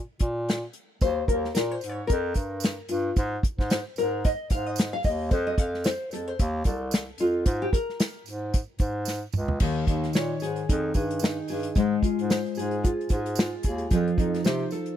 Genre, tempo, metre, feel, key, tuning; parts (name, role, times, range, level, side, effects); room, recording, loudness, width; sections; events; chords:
indie pop, bedroom pop; 112 BPM; 4/4; swing 55% on 16ths; Ab major; A4 = 441 Hz
warm bass clarinet; bass; 0.2-14.7 s; C2 to C3; -30 LUFS; equal
unplugged drum kit; drums; 0.2-15.0 s; crash cymbal, hi-hat, kick drum, snare drum, toms; -25 LUFS; equal
nylon-string guitar; accompaniment; 1.0-15.0 s; Eb3 to F5; -28 LUFS; left 2 dB; lush chorus, warbly pitch drift
tambourine; percussion; 1.0-14.8 s; -42 LUFS; right 12 dB
small room reverb; dry, close 1970s-style studio recording; -24 LUFS; side -11 dB against mid
0.0-9.6 A section; 9.6-15.0 B section
nylon-string guitar solo 0.0-9.6; drum fill 9.1-9.6
0.0 N.C.; 1.0 Ebsus2; 3.2 Ab5; 5.3 F7; 7.5 Absus2; 9.6 Eb7sus4; 11.8 Ab6; 13.9 F7